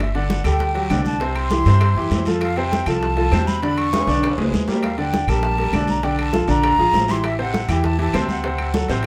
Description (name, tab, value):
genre	Afro-Cuban jazz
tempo	199 BPM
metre	4/4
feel	straight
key	unclear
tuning	A4 = 440 Hz
part	breathy jazz flute	melody	0.0-9.1 s	E5 to C#6	-25 LUFS	equal	none
part	upright bass	bass	0.0-9.1 s	G1 to G2	-24 LUFS	equal	none
part	bongos	percussion	0.0-9.0 s	none	-34 LUFS	equal	none
part	congas	percussion	0.0-9.1 s	none	-29 LUFS	equal	none
part	guiro	percussion	0.0-9.0 s	none	-39 LUFS	equal	none
part	timbales	percussion	0.0-9.1 s	none	-32 LUFS	equal	none
part	clear concert grand piano	accompaniment	0.2-9.1 s	C3 to D5	-25 LUFS	equal	none
part	claves	percussion	0.5-8.7 s	none	-37 LUFS	equal	none
room	moderate studio reverb, RT60 0.6 s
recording	none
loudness	-19 LUFS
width	mono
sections	0.0-9.1 A section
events	drum fill 3.9-4.8, 8.9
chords	0.0 Gsus2; 1.2 C; 2.4 F; 3.6 E6; 4.8 Ebmaj7; 6.0 Bm7b5; 6.6 Bb7; 7.2 Am7; 8.4 D7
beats	| 0.00 0.30 0.60 0.90 | 1.21 1.51 1.81 2.11 | 2.41 2.72 3.02 3.32 | 3.62 3.92 4.22 4.53 | 4.83 5.13 5.43 5.73 | 6.03 6.33 6.63 6.93 | 7.24 7.54 7.84 8.14 | 8.44 8.74 9.04